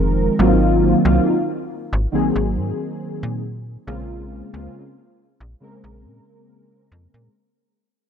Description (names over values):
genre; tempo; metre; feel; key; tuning
vaporwave; 69 BPM; 4/4; straight; unclear; A4 = 439 Hz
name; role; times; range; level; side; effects
warbly lo-fi synth keys; accompaniment; 0.0-7.3 s; Db3 to Bb4; -19 LUFS; equal; analog chorus, analog delay
slap-like FM bass; bass; 0.0-7.3 s; F1 to Bb2; -22 LUFS; equal; none
room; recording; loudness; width
light reverb; none; -16 LUFS; side -8 dB against mid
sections
0.0-7.4 A section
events
fade-out 0.0-7.4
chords
0.4 Ab13; 3.4 Bbm9